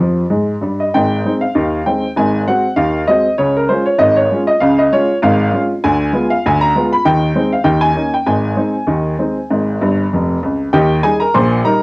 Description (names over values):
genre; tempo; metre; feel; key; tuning
ragtime piano; 98 BPM; 2/4; swing 55% on 16ths; Ab major; A4 = 440 Hz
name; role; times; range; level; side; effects
clear upright piano; solo; 0.0-11.8 s; F1 to C6; -12 LUFS; equal; cassette tape
room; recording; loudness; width
moderate studio reverb, RT60 0.6 s; home recording on cassette; -12 LUFS; side -28 dB against mid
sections
0.9-10.7 A section; 10.7-11.8 B section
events
upright piano fill 0.0-0.9, 9.8-10.7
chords
0.0 Eb; 0.9 Ab; 2.2 Ab7; 3.4 Db; 5.8 Ddim7; 7.0 Ab/Eb; 7.7 Eb5; 8.3 Ab; 10.7 Eb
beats
0.32 | 0.93 1.54 | 2.16 2.77 | 3.38 3.99 | 4.60 5.21 | 5.82 6.43 | 7.05 7.66 | 8.27 8.89 | 9.50 10.12 | 10.73 11.34